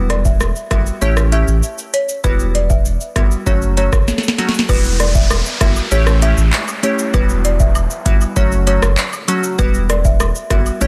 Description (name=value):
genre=dancehall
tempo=98 BPM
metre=4/4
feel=straight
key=E dorian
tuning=A4 = 442 Hz
part: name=glassy wavetable pluck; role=accompaniment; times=0.0-10.9 s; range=F#3 to G4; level=-24 LUFS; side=equal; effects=chorus
part: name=saturated sub bass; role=bass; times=0.0-10.9 s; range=E1 to A1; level=-19 LUFS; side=equal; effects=none
part: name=folk marimba with medium mallets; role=melody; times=0.1-10.9 s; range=B4 to E5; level=-25 LUFS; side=equal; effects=digital delay
part: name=booming analog drum machine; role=drums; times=0.1-10.9 s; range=handclaps, hi-hat, kick drum, rim click, shaker, snare drum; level=-18 LUFS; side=equal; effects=overdrive
part: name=woodblock and cabasa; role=percussion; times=4.7-10.8 s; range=none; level=-32 LUFS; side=equal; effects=none
part: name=downlifter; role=sound effects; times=4.7-9.6 s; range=none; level=-28 LUFS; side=equal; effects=none
room=little or no reverb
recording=dense, heavily limited modern master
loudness=-15 LUFS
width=mono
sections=0.0-4.7 A section; 4.7-10.9 B section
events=drum fill 4.1-4.7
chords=0.0 Emadd9; 1.0 A7; 2.2 Emadd9; 3.5 F#m; 4.7 Emadd9; 5.9 A7; 7.1 Emadd9; 8.4 F#m; 9.6 Emadd9